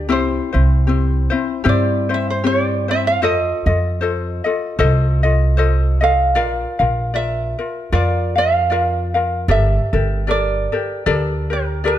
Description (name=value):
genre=Hawaiian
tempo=77 BPM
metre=4/4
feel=swing 56% on 8ths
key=F major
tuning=A4 = 444 Hz
part: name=ukulele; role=accompaniment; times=0.0-12.0 s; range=C4 to F5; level=-20 LUFS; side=left 5 dB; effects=none
part: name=upright bass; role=bass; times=0.0-12.0 s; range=G1 to G2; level=-18 LUFS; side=right 1 dB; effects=none
part: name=ukulele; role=melody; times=0.1-12.0 s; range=Bb4 to F5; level=-20 LUFS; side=right 4 dB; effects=none
room=light reverb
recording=close, detailed microphones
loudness=-15 LUFS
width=side -11 dB against mid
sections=0.0-12.0 A section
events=none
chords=0.1 C; 3.2 F7; 6.4 Bb; 9.5 Gmadd9